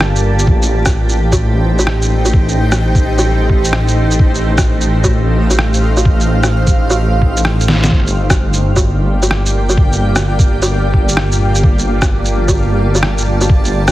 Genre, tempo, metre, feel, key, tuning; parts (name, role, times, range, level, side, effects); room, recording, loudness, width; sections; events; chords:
future garage; 129 BPM; 4/4; swing 65% on 16ths; A4 = 440 Hz
granular cloud pad; sustained chords; 0.0-13.9 s; A3 to A5; -18 LUFS; right 1 dB; built-in reverb, sidechain pumping
dark detuned saw bass; bass; 0.0-13.9 s; G1 to A1; -14 LUFS; equal; sidechain pumping
electronic rim click, shaker, woodblock and snare drum; drums; 0.0-13.9 s; -17 LUFS; equal; studio reverb
electronic kick drum; drums; 0.5-13.6 s; -12 LUFS; equal; studio reverb
little or no reverb; heavily compressed radio sound, multiband compression, vinyl crackle; -10 LUFS; side -15 dB against mid
0.0-13.9 A section
kick drops out 7.4-7.9; drum fill 7.7
0.5 Am7b5; 7.9 Gm7